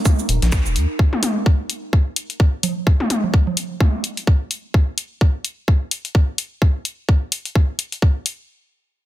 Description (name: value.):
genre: minimal techno.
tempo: 128 BPM.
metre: 4/4.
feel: swing 57% on 16ths.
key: unclear.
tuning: A4 = 439 Hz.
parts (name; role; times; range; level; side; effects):
warbly tape-like pad; texture; 0.0-1.0 s; Eb4 to Bb5; -32 LUFS; right 2 dB; chorus, built-in reverb, sidechain pumping.
electronic kick drum; drums; 0.1-8.1 s; none; -14 LUFS; equal; overdrive.
electronic tambourine and snare drum; drums; 0.1-0.9 s; none; -35 LUFS; equal; sidechain pumping on perc, high-pass filter on perc, high-pass filter on snare, sidechain pumping on hats, high-pass filter on hats.
punchy analog drum machine; drums; 0.1-8.4 s; finger snaps, hi-hat, shaker; -23 LUFS; left 3 dB; soft clipping on snare.
electronic toms and congas; percussion; 0.1-3.9 s; none; -23 LUFS; right 1 dB; tape echo.
rubbery square bass; bass; 0.3-0.9 s; Eb1 to Eb2; -18 LUFS; equal; sidechain pumping.
room: digital ambience.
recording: dense, heavily limited modern master.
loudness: -17 LUFS.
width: side -15 dB against mid.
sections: 0.0-8.5 A section.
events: none.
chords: 0.0 Eb5.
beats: 0.05 0.52 | 0.99 1.46 1.93 2.40 | 2.87 3.34 3.80 4.27 | 4.74 5.21 5.68 6.15 | 6.62 7.09 7.55 8.02.